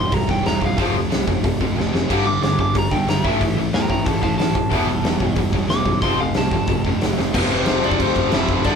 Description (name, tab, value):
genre	punk rock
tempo	183 BPM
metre	4/4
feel	straight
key	unclear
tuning	A4 = 439 Hz
part	lightly driven lead guitar	melody	0.0-8.8 s	B3 to D6	-25 LUFS	equal	none
part	distorted electric guitar	riff	0.0-8.8 s	F2 to D4	-24 LUFS	right 7 dB	overdrive
part	overdriven electric guitar	riff	0.0-8.8 s	E2 to A3	-24 LUFS	left 7 dB	none
part	sludgy distorted guitar	riff	0.0-8.8 s	E2 to A3	-28 LUFS	left 1 dB	overdrive
part	growling picked electric bass	bass	0.0-8.8 s	E1 to E2	-27 LUFS	equal	overdrive
part	big rock drum kit	drums	0.1-8.7 s	crash cymbal, hi-hat, kick drum, snare drum	-21 LUFS	equal	none
room	moderate large studio reverb, RT60 1.5 s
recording	band playing live in one room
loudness	-17 LUFS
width	side -6 dB against mid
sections	0.0-7.3 A section; 7.3-8.8 B section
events	lead electric guitar solo 0.0-7.3; drum fill 1.8-2.1, 7.2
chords	0.0 Em; 0.8 F; 2.1 G5; 3.2 A5; 4.7 Em; 6.0 F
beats	0.12 0.45 | 0.78 1.11 1.44 1.77 | 2.10 2.43 2.75 3.08 | 3.41 3.74 4.07 4.39 | 4.72 5.05 5.38 5.71 | 6.04 6.36 6.69 7.02 | 7.35 7.67 8.00 8.33 | 8.66